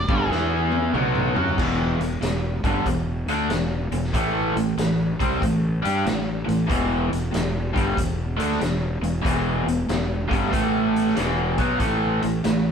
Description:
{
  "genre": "blues rock power trio and southern rock",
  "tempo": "94 BPM",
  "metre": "4/4",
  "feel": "swing 66% on 8ths",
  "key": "unclear",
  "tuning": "A4 = 440 Hz",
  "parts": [
    { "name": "fuzz fingered electric bass", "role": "bass", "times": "0.0-12.7 s", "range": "E1 to G2", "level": "-26 LUFS", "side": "equal", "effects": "overdrive" },
    { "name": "raw garage guitar", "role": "riff", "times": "0.1-12.7 s", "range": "E2 to G4", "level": "-22 LUFS", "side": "equal", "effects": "overdrive" },
    { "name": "raw garage drum kit", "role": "drums", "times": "0.1-12.6 s", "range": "crash cymbal, hi-hat, kick drum, snare drum, toms", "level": "-27 LUFS", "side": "equal", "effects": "none" }
  ],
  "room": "moderate stone room reverb, RT60 1.3 s",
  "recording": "band playing live in one room",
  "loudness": "-20 LUFS",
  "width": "side -7 dB against mid",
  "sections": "0.0-1.6 A section; 1.6-12.7 B section",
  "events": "drum fill 0.3-1.6",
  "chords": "0.0 E5; 0.9 B5; 1.6 E5; 4.1 A5; 6.7 E5; 10.5 A5; 11.2 E5; 11.8 A5"
}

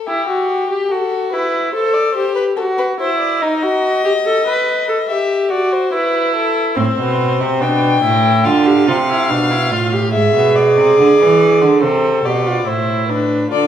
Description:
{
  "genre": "classical, baroque-style fugue for string quartet",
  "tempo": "71 BPM",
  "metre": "4/4",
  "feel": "straight",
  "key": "A minor",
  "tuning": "A4 = 445 Hz",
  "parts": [
    { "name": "warm violin", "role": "second line", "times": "0.0-13.7 s", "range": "G4 to G5", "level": "-19 LUFS", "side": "left 5 dB", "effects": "none" },
    { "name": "warm viola", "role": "accompaniment", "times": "0.1-13.7 s", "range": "C4 to B4", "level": "-15 LUFS", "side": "right 1 dB", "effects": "none" },
    { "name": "rich cello", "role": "bass", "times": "6.8-13.7 s", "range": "G#2 to E3", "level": "-16 LUFS", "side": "right 4 dB", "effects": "none" },
    { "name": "warm violin", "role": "melody", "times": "13.5-13.7 s", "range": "D5", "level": "-15 LUFS", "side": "left 11 dB", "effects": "none" }
  ],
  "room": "wet recital hall reverb, RT60 1.8 s",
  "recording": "recorded in a church or concert hall",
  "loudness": "-13 LUFS",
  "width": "side -9 dB against mid",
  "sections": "0.0-13.5 A section",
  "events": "none",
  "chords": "0.1 Em; 1.7 F#dim; 3.4 B7/D#; 5.1 Em; 6.8 Am; 8.5 Bdim; 10.1 E7/G#; 11.8 Am"
}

